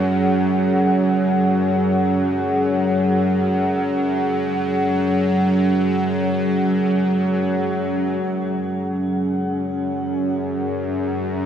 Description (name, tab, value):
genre	dark ambient drone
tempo	free time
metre	none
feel	none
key	unclear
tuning	A4 = 445 Hz
part	dark analog pad	sustained chords	0.0-11.5 s	C#4 to F#5	-22 LUFS	equal	chorus, shimmer reverb
part	bowed-like drone	drone	0.0-11.5 s	F#2 to F#3	-20 LUFS	equal	built-in reverb
part	bronze singing bowl	texture	0.0-8.2 s	C#5	-39 LUFS	equal	none
room	wet cathedral reverb, RT60 5.3 s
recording	none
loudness	-18 LUFS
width	side -9 dB against mid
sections	0.0-8.2 A section; 8.2-11.5 B section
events	none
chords	0.0 F#sus2